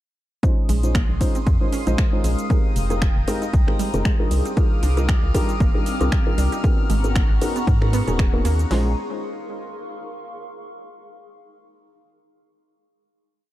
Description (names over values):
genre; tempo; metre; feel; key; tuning
deep house; 116 BPM; 4/4; swing 56% on 16ths; Bb dorian; A4 = 441 Hz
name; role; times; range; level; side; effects
airy breathy pad; sustained chords; 0.7-8.9 s; Ab3 to Eb6; -32 LUFS; left 1 dB; chorus, phaser, vintage 12-bit sampler grit, sidechain pumping
felt-muted upright piano; stabs; 0.4-8.9 s; G3 to C5; -27 LUFS; left 1 dB; sidechain pumping, ping-pong delay
house drum kit; drums; 0.4-8.8 s; hi-hat, kick drum, snare drum; -20 LUFS; equal; overdrive
house drum kit; drums; 0.4-8.7 s; cabasa, finger snaps, hi-hat, ride cymbal; -32 LUFS; right 1 dB; overdrive
granular cloud pad; texture; 1.6-10.7 s; C4 to Db6; -33 LUFS; left 1 dB; built-in reverb, sidechain pumping
analog pluck; arpeggios; 0.7-8.9 s; G3 to Eb4; -32 LUFS; right 4 dB; chorus, sidechain pumping, ping-pong delay
organ-like FM bass; bass; 0.7-8.9 s; Eb1 to Ab2; -21 LUFS; equal; sidechain pumping
clear chamber violin section; texture; 4.6-8.7 s; F6; -36 LUFS; left 7 dB; sidechain pumping
room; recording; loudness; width
little or no reverb; dark, warm production; -18 LUFS; side -14 dB against mid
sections
0.4-8.7 drop; 8.7-10.8 final chord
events
drop 0.4-8.7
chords
0.4 Bbm11; 2.5 Fm11; 4.3 Cm11; 6.6 Abm11; 8.7 Bbm11